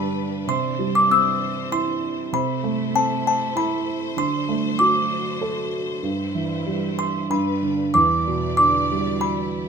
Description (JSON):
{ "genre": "children's music, lullaby", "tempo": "96 BPM", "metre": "3/4", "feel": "rubato", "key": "C major", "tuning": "A4 = 439 Hz", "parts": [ { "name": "music box", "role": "melody", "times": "0.0-9.7 s", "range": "A5 to E6", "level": "-21 LUFS", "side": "left 1 dB", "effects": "none" }, { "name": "felt-muted upright piano", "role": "accompaniment", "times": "0.0-9.7 s", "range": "E2 to A4", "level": "-24 LUFS", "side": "right 3 dB", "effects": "none" }, { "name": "clear studio string section", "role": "sustained chords", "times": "0.0-9.7 s", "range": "C3 to D5", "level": "-32 LUFS", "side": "left 3 dB", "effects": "none" } ], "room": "moderate small room reverb, RT60 0.5 s", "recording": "minimal, uncompressed stereo recording", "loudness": "-19 LUFS", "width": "side -6 dB against mid", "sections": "0.0-7.9 A section; 7.9-9.7 B section", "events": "none", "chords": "0.5 Cadd9; 2.3 Am/C; 4.2 D7; 6.0 C/G; 7.3 G; 7.9 Em7", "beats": "| 0.48 1.10 1.72 | 2.33 2.95 3.56 | 4.17 4.79 5.42 | 6.04 6.67 7.31 | 7.95 8.58 9.22" }